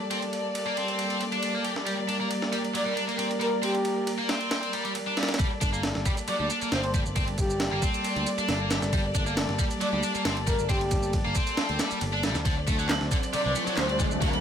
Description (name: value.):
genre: breakbeat, breaks.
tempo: 136 BPM.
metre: 4/4.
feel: straight.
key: G harmonic minor.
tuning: A4 = 440 Hz.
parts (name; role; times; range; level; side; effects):
warm chamber string section; sustained chords; 0.0-14.4 s; F#3 to D5; -31 LUFS; equal; sidechain pumping.
heavy high-gain guitar; riff; 0.1-14.3 s; C3 to G4; -31 LUFS; equal; distortion, tube saturation, low-pass filter, ping-pong delay.
breakbeat sampler-style drum kit; drums; 0.1-14.4 s; kick drum, ride cymbal, snare drum; -30 LUFS; equal; high-pass filter on cymbals, high-pass filter on snare, high-pass filter on kick.
breathy flute-like synth lead; melody; 2.8-14.0 s; G4 to D5; -31 LUFS; equal; chorus, telephone sound, cassette tape, ping-pong delay.
electronic shaker and handclaps; drums; 5.4-14.3 s; none; -37 LUFS; right 3 dB; low-pass filter on perc, low-pass filter on snare, low-pass filter on room.
picked electric bass; bass; 5.6-14.4 s; G1 to D2; -32 LUFS; equal; low-pass filter.
riser; sound effects; 13.2-14.4 s; none; -35 LUFS; equal; none.
room: moderate studio reverb, RT60 0.6 s.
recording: none.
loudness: -25 LUFS.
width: side -8 dB against mid.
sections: 0.0-5.4 A section; 5.4-14.4 B section.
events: build-up 5.4-14.4; riser 13.2-14.4.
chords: 0.0 Gmadd9; 12.5 D7.